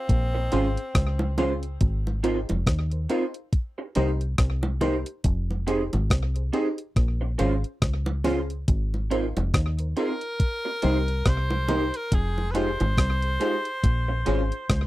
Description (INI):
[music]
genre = lovers rock reggae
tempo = 70 BPM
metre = 4/4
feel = swing 59% on 16ths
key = unclear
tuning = A4 = 440 Hz
[part]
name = edgy tenor saxophone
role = melody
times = 0.0-1.4, 10.0-14.9 s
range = C4 to C5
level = -31 LUFS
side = equal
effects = tape echo
[part]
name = deep dub fingered electric bass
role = bass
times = 0.1-14.9 s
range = F1 to Eb2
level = -26 LUFS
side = equal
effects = none
[part]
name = gated 80s digital drum machine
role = drums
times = 0.1-14.9 s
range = hi-hat, kick drum, rim click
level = -24 LUFS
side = equal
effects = none
[part]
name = electric guitar through a small old amp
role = stabs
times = 0.3-14.4 s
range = Ab3 to C5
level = -28 LUFS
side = right 3 dB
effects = ensemble chorus
[part]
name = FM electric piano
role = accompaniment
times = 0.5-14.4 s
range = Db4 to C5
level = -28 LUFS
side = left 1 dB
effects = chorus, slapback echo
[part]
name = bongos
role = percussion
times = 1.2-13.0 s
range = none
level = -31 LUFS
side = right 2 dB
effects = none
[sound]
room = little or no reverb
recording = dry, close 1970s-style studio recording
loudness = -23 LUFS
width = side -16 dB against mid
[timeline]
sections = 0.0-14.9 A section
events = none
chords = 0.1 Bbm9; 1.8 Ab6; 3.5 Cm7; 5.2 Fm7; 7.0 Bbm9; 8.7 Ab6; 10.4 Cm7; 12.1 Fm7; 13.8 Bbm9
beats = 0.09 0.95 | 1.81 2.67 3.53 4.39 | 5.25 6.10 6.96 7.82 | 8.68 9.54 10.40 11.26 | 12.12 12.98 13.84 14.70